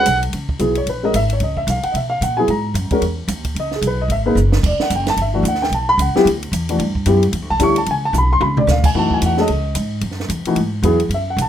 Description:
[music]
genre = modal jazz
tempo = 223 BPM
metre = 4/4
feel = swing 60% on 8ths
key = C# dorian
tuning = A4 = 444 Hz
[part]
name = dark concert grand piano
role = accompaniment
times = 0.0-11.5 s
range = D3 to C#6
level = -17 LUFS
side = left 1 dB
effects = none
[part]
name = upright bass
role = bass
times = 0.0-11.5 s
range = E1 to B2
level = -20 LUFS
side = equal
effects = none
[part]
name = compact cocktail drum kit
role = drums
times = 0.1-11.5 s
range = crash cymbal, hi-hat, kick drum, ride cymbal, snare drum, toms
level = -24 LUFS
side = right 2 dB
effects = none
[sound]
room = moderate club ambience, RT60 0.5 s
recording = minimal, uncompressed stereo recording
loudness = -15 LUFS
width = side -10 dB against mid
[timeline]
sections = 0.3-8.9 A section; 8.9-11.5 A section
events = drum fill 4.4, 8.1-8.7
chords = 0.3 C#m11; 4.6 Em11; 7.9 Bm69; 8.9 F#m9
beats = 0.06 | 0.33 0.60 0.87 1.14 | 1.41 1.68 1.95 2.21 | 2.48 2.75 3.02 3.29 | 3.56 3.83 4.10 4.37 | 4.64 4.91 5.17 5.44 | 5.71 5.98 6.25 6.52 | 6.79 7.06 7.33 7.60 | 7.87 8.14 8.41 8.68 | 8.95 9.21 9.48 9.75 | 10.02 10.29 10.56 10.83 | 11.10 11.37

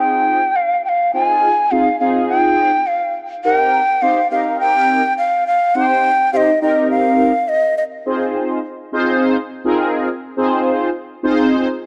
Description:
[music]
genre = pop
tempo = 104 BPM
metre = 4/4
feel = straight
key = unclear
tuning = A4 = 440 Hz
[part]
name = bansuri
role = melody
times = 0.0-7.8 s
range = Eb5 to Ab5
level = -17 LUFS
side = equal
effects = low-pass filter, digital delay
[part]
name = mellow synth brass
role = accompaniment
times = 0.0-11.7 s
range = C4 to C5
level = -20 LUFS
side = equal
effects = chorus, phaser, low-pass filter
[sound]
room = moderate lush hall reverb, RT60 2.5 s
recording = none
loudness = -16 LUFS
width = mono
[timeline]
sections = 0.0-8.1 A section; 8.1-11.9 B section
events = build-up 0.0-8.1; drop 8.1-11.9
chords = 0.0 Fm7; 3.4 Eb6; 8.1 Fm7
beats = 0.56 | 1.14 1.71 2.29 2.87 | 3.44 4.02 4.60 5.17 | 5.75 6.33 6.91 7.48 | 8.06 8.64 9.21 9.79 | 10.37 10.95 11.52

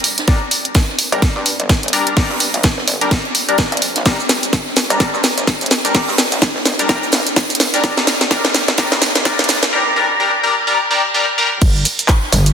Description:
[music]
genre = bass house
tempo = 127 BPM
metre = 4/4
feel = swing 58% on 16ths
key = G minor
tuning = A4 = 440 Hz
[part]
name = compact cocktail drum kit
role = drums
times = 0.0-12.5 s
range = hi-hat, snare drum, tambourine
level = -26 LUFS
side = right 3 dB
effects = high-pass filter on hats, high-pass filter on snare, high-pass filter on perc, high-pass filter on room
[part]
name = garage drum kit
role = drums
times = 0.0-12.5 s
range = crash cymbal, handclaps, hi-hat, shaker, snare drum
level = -15 LUFS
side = equal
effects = none
[part]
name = band-passed chord stab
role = stabs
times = 0.3-11.5 s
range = G3 to Bb4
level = -18 LUFS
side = left 2 dB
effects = chorus, phaser, sidechain pumping, tape echo
[part]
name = metallic wobble bass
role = bass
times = 0.3-12.5 s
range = F1 to G2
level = -21 LUFS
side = equal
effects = distortion, chorus, tube saturation, sidechain pumping, high-pass filter
[part]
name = electronic kick drum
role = drums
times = 0.3-12.2 s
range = none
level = -15 LUFS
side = equal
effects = none
[sound]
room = wet lush hall reverb, RT60 1.9 s, studio ambience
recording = dense, heavily limited modern master, high-pass filter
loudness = -13 LUFS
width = side -7 dB against mid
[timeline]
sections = 0.0-11.6 A section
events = build-up 0.0-11.6; drum fill 0.0-9.7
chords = 0.0 Gm; 11.6 N.C.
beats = | 0.28 0.75 1.22 1.70 | 2.17 2.64 3.11 3.58 | 4.06 4.53 5.00 5.47 | 5.95 6.42 6.89 7.36 | 7.84 8.31 8.78 9.25 | 9.73 10.20 10.67 11.14 | 11.62 12.09

